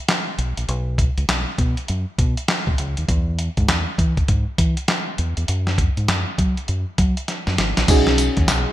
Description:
R&B, new jack swing; 100 BPM; 4/4; swing 63% on 16ths; B major; A4 = 440 Hz
dusty soul sampler-style drum kit; drums; 0.1-8.7 s; crash cymbal, handclaps, hi-hat, kick drum, snare drum, tambourine; -20 LUFS; equal; gated reverb
deep dub fingered electric bass; bass; 0.4-8.6 s; G#1 to F#3; -22 LUFS; equal
FM electric piano; accompaniment; 7.9-8.7 s; C#4 to G#4; -19 LUFS; equal; chorus, phaser
light reverb, digital ambience; bright 1980s-style digital production; -18 LUFS; side -14 dB against mid
0.0-7.9 A section
drum fill 7.3-7.9
0.0 N.C.; 7.9 B69

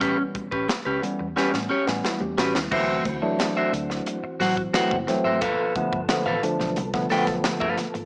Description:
funk; 89 BPM; 4/4; straight; A4 = 440 Hz
electric guitar at the edge of break-up; accompaniment; 0.0-8.0 s; C#4 to G5; -28 LUFS; equal
mellow tine electric piano; stabs; 0.0-7.9 s; D3 to G4; -29 LUFS; equal; lush chorus
vintage muted fingered electric bass; bass; 0.0-8.1 s; F#1 to A2; -37 LUFS; equal
crisp fusion drum kit; drums; 0.0-8.1 s; crash cymbal, hi-hat, kick drum, snare drum; -31 LUFS; equal
congas; percussion; 0.0-8.1 s; -38 LUFS; equal
percussive tonewheel organ; sustained chords; 2.7-8.1 s; E3 to A4; -35 LUFS; equal; fast rotary speaker, overdrive, chorus vibrato
light reverb; small speaker sound; -24 LUFS; mono
0.0-2.7 A section; 2.7-8.1 B section
drum fill 1.4-2.7
0.0 A9; 2.7 D9; 5.4 G9

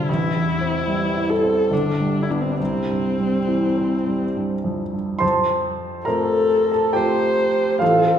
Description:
classical, romantic duo for viola and grand piano; 70 BPM; 3/4; uneven beats, rubato; C major; A4 = 440 Hz
dark viola; melody; 0.0-8.2 s; C4 to C5; -21 LUFS; left 2 dB
clear grand piano; accompaniment; 0.0-8.2 s; G1 to C6; -20 LUFS; right 1 dB
wet recital hall reverb, RT60 1.6 s; recorded in a church or concert hall; -18 LUFS; side -9 dB against mid
0.0-5.2 A section; 5.2-8.2 B section
0.1 Am7; 1.7 G; 2.6 C; 5.2 F

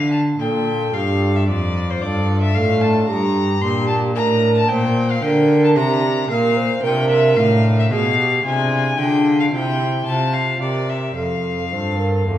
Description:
classical, baroque-style sonata movement with continuo; 111 BPM; 3/4; straight; F major from 6.3 s; A4 = 440 Hz
dark violin; melody; 0.0-12.4 s; C5 to C6; -22 LUFS; left 3 dB
pipe organ, foundations; accompaniment; 0.0-12.4 s; E2 to C5; -24 LUFS; left 1 dB
rich cello; bass; 0.0-12.4 s; E2 to D3; -19 LUFS; equal
mellow hollow baroque flute; second line; 0.4-12.4 s; D4 to C5; -22 LUFS; right 3 dB
wet recital hall reverb, RT60 1.2 s; heard from further back in the room; -15 LUFS; side -12 dB against mid
0.0-12.4 A section
0.0 Dm; 1.5 Dm/F; 3.1 Gm; 4.7 Gm/Bb; 6.3 Bb; 7.9 Bdim7; 9.5 C; 10.1 F/C; 10.6 C7; 11.2 F

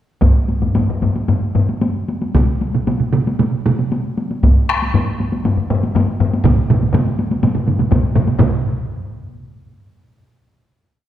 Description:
japanese traditional, taiko drum ensemble; 112-133 BPM; 4/4; straight
solo taiko drums; percussion; 0.2-8.6 s; -20 LUFS; left 2 dB
taiko ensemble; percussion; 0.2-8.8 s; -18 LUFS; left 2 dB
taiko ensemble; percussion; 0.2-8.6 s; -18 LUFS; right 1 dB
taiko ensemble; percussion; 2.3-8.8 s; -18 LUFS; right 4 dB
wet concert hall reverb, RT60 1.7 s; -14 LUFS; side -11 dB against mid
0.2-8.4 A section; 8.4-10.2 final hit
speeding up 0.2-10.2

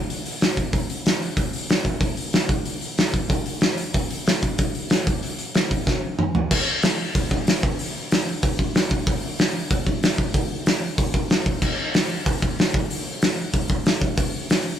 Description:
punk; 188 BPM; 4/4; straight
loose indie drum kit; drums; 0.1-14.6 s; crash cymbal, hi-hat, kick drum, snare drum, toms; -20 LUFS; equal
light reverb; rough rehearsal-room recording; -20 LUFS; side -10 dB against mid
0.0-6.5 A section; 6.5-14.8 B section
drum fill 5.9-6.5

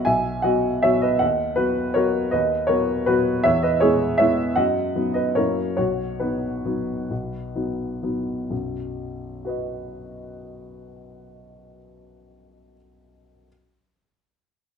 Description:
classical, piano waltz; 122-172 BPM; 3/4; rubato; B major; A4 = 440 Hz
warm baby grand piano; solo; 0.0-13.5 s; B1 to G#5; -20 LUFS; equal
wet large studio reverb, RT60 0.9 s; heard from further back in the room; -20 LUFS; side -7 dB against mid
0.0-8.5 A section; 8.5-11.3 B section
slowing down 5.2-8.5
0.0 B; 1.2 B/D#; 3.5 C#m7/E; 4.6 B/F#; 5.4 F#7; 5.8 B

